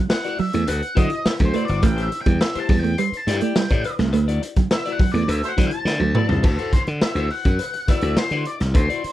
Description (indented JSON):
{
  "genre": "funk",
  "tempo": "104 BPM",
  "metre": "4/4",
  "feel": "straight",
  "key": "unclear",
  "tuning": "A4 = 443 Hz",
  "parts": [
    { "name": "mellow electric guitar", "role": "riff", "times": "0.0-6.3 s", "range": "F#3 to A3", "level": "-23 LUFS", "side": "right 7 dB", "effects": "none" },
    { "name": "octave-fuzz lead guitar", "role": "melody", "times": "0.1-9.1 s", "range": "A4 to C6", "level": "-27 LUFS", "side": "left 1 dB", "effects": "distortion" },
    { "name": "clean electric guitar", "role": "accompaniment", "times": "0.1-9.1 s", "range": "E4 to D5", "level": "-30 LUFS", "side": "left 9 dB", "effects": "spring reverb" },
    { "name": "raw garage drum kit", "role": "drums", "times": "0.1-9.1 s", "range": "crash cymbal, hi-hat, kick drum, snare drum, toms", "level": "-20 LUFS", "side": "equal", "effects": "none" },
    { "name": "cowbell", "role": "percussion", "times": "0.1-8.9 s", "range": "none", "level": "-32 LUFS", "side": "left 6 dB", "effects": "none" },
    { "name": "glassy slap bass", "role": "bass", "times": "0.4-9.1 s", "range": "G1 to D3", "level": "-22 LUFS", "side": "equal", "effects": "none" },
    { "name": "warm horn section", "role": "second line", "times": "5.4-5.5 s", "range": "A3 to C5", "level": "-27 LUFS", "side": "right 1 dB", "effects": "none" }
  ],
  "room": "little or no reverb",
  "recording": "none",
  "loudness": "-18 LUFS",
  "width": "side -14 dB against mid",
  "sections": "0.0-6.4 A section; 6.4-9.1 B section",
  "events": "lead electric guitar solo 0.0-6.4; band accent 4.1-6.4; drum fill 5.9-6.4",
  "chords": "0.0 D9; 1.8 Am7; 4.1 D9"
}